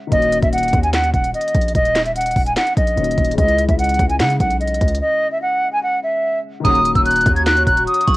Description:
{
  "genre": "hip hop, trap",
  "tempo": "147 BPM",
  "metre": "4/4",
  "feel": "half-time",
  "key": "Eb phrygian",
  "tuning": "A4 = 439 Hz",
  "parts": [
    { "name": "dark concert grand piano", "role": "accompaniment", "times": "0.0-8.2 s", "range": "Db3 to Gb4", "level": "-26 LUFS", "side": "left 6 dB", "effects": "low-pass filter, cassette tape" },
    { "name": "hollow concert flute", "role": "melody", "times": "0.1-8.2 s", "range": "Eb5 to Ab6", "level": "-17 LUFS", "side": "equal", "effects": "low-pass filter, cassette tape" },
    { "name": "hard-hitting 808-style bass", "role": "bass", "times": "0.1-8.2 s", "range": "Eb1 to Db3", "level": "-21 LUFS", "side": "equal", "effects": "none" },
    { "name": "trap drum kit", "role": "drums", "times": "0.1-8.2 s", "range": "handclaps, hi-hat, kick drum, snare drum", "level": "-20 LUFS", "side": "equal", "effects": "cassette tape" },
    { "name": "metallic FM bell", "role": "second line", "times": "6.6-8.2 s", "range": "Bb5 to Db6", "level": "-27 LUFS", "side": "right 6 dB", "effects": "chorus, cassette tape, analog delay" },
    { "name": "hollow soft pad", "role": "sustained chords", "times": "6.6-8.2 s", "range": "Gb4 to Db6", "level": "-27 LUFS", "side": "equal", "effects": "chorus, cassette tape" },
    { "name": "mellow brass ensemble", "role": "stabs", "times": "6.6-6.8 s", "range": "Eb2 to Gb3", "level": "-27 LUFS", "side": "right 6 dB", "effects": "cassette tape, analog delay" }
  ],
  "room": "small room ambience",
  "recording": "home recording on cassette",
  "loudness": "-14 LUFS",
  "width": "side -18 dB against mid",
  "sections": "0.0-6.6 A section; 6.6-8.2 B section",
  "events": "break 5.0-6.6",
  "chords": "0.1 Ebm7; 3.4 Dbmadd9; 6.6 Ebm7",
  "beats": "| 0.12 0.53 0.93 1.34 | 1.75 2.16 2.57 2.98 | 3.38 3.79 4.20 4.61 | 5.01 5.42 5.83 6.24 | 6.65 7.06 7.46 7.87"
}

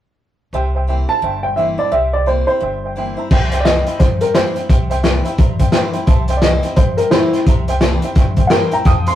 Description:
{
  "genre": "rockabilly",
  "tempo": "173 BPM",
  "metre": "4/4",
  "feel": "swing 61% on 8ths",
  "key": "C mixolydian",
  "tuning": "A4 = 439 Hz",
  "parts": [
    { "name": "honky-tonk upright piano", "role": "accompaniment", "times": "0.5-9.2 s", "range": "C5 to Bb5", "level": "-24 LUFS", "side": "right 2 dB", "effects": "none" },
    { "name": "picked steel-string acoustic guitar", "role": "accompaniment", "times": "0.5-9.2 s", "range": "F2 to E4", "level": "-27 LUFS", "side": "left 2 dB", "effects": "none" },
    { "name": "upright bass", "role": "bass", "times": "0.5-9.2 s", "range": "G1 to G2", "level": "-21 LUFS", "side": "equal", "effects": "none" },
    { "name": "dark upright piano", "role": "melody", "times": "1.1-9.2 s", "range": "E4 to Eb6", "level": "-16 LUFS", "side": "equal", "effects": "none" },
    { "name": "vintage drum kit", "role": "drums", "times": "3.3-9.1 s", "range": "crash cymbal, hi-hat, kick drum, snare drum", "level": "-14 LUFS", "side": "equal", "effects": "none" }
  ],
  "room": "moderate studio reverb, RT60 0.5 s",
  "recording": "rough rehearsal-room recording, warm saturation",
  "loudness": "-13 LUFS",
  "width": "side -12 dB against mid",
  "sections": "0.5-3.3 A section; 3.3-9.2 B section",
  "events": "none",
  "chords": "0.5 C7",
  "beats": "| 0.53 0.88 1.23 1.58 | 1.92 2.27 2.62 2.96 | 3.31 3.66 4.00 4.35 | 4.70 5.04 5.39 5.74 | 6.08 6.43 6.78 7.12 | 7.47 7.82 8.16 8.51 | 8.86"
}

